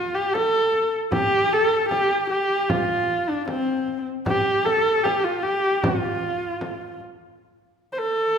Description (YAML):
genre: mongolian traditional, Mongolian folk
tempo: 76 BPM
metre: 4/4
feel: straight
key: F gong mode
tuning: A4 = 442 Hz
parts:
  - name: warm horsehead fiddle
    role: melody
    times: 0.0-8.4 s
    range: C4 to C5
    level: -20 LUFS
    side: equal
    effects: none
  - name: frame drum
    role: percussion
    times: 0.4-7.1 s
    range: none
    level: -30 LUFS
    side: equal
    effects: none
room: wet recital hall reverb, RT60 1.8 s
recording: minimal, uncompressed stereo recording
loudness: -20 LUFS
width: side -7 dB against mid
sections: 0.0-7.4 A section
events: none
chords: none